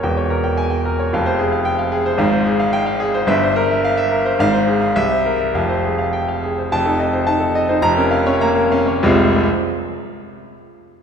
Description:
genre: classical, virtuoso piano study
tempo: 94-112 BPM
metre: 2/4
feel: rubato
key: F minor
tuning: A4 = 438 Hz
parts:
  - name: warm baby grand piano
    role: solo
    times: 0.0-9.5 s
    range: E1 to Bb5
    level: -15 LUFS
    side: equal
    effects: none
room: wet church reverb, RT60 2.7 s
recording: recorded in a church or concert hall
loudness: -15 LUFS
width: side -7 dB against mid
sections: 0.0-6.7 A section; 6.7-9.0 B section; 9.0-10.2 C section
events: slowing down 6.1-9.0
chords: 0.0 Edim7; 1.1 Fm; 2.2 Fm/Ab; 3.3 C7/G; 4.4 Fm/Ab; 5.0 C7; 5.5 Fm; 6.7 F7; 7.8 Bbm/F; 9.0 Fm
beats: | 0.04 0.58 | 1.12 1.66 | 2.20 2.74 | 3.29 3.84 | 4.39 4.96 | 5.54 6.14 | 6.72 7.28 | 7.83 8.41 | 9.03

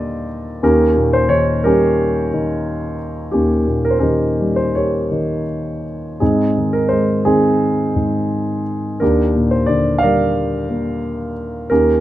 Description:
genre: classical, lyrical solo piano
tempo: 79-91 BPM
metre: 4/4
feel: rubato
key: Eb major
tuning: A4 = 441 Hz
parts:
  - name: warm grand piano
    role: solo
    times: 0.0-12.0 s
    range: Eb2 to F5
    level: -15 LUFS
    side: equal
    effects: none
room: light reverb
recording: close, detailed microphones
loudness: -15 LUFS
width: side -14 dB against mid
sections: 0.0-12.0 A section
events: none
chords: 0.0 Ebmaj7; 0.6 Eb7; 6.2 Ab; 9.0 Ebmaj7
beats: | 0.62 1.29 1.97 2.65 | 3.33 4.02 4.74 5.49 | 6.21 6.91 7.62 8.32 | 9.01 9.69 10.36 11.03 | 11.70

